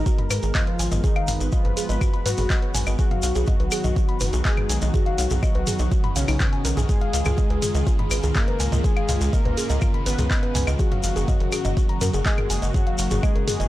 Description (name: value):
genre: melodic techno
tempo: 123 BPM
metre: 4/4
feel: straight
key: unclear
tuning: A4 = 440 Hz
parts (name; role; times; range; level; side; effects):
- analog synth brass; melody; 0.0-13.7 s; C#3 to B4; -29 LUFS; left 1 dB; chorus, vintage 12-bit sampler grit, sidechain pumping, tape echo
- lush unison pad; sustained chords; 0.0-13.7 s; C#3 to B4; -33 LUFS; equal; chorus, sidechain pumping
- woody wave-folded pluck; arpeggios; 0.0-13.7 s; D#4 to B5; -31 LUFS; left 1 dB; chorus, sidechain pumping, tape echo
- tight sequencer bass; bass; 0.0-13.7 s; F#1 to G#2; -24 LUFS; equal; sidechain pumping
- swarming drone; drone; 1.0-13.7 s; G#2 to D#3; -36 LUFS; right 1 dB; built-in reverb, sidechain pumping
- electronic kick drum; drums; 0.1-13.3 s; none; -22 LUFS; equal; overdrive
- punchy analog drum machine; drums; 0.1-13.7 s; claves, handclaps, hi-hat, toms; -28 LUFS; equal; none
- shekere; percussion; 0.1-13.7 s; none; -33 LUFS; left 3 dB; none
room: little or no reverb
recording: dry, gritty hardware recording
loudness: -19 LUFS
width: side -15 dB against mid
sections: 0.0-13.7 A section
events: none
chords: 0.0 G#madd9; 3.0 B; 6.9 C#; 10.8 F#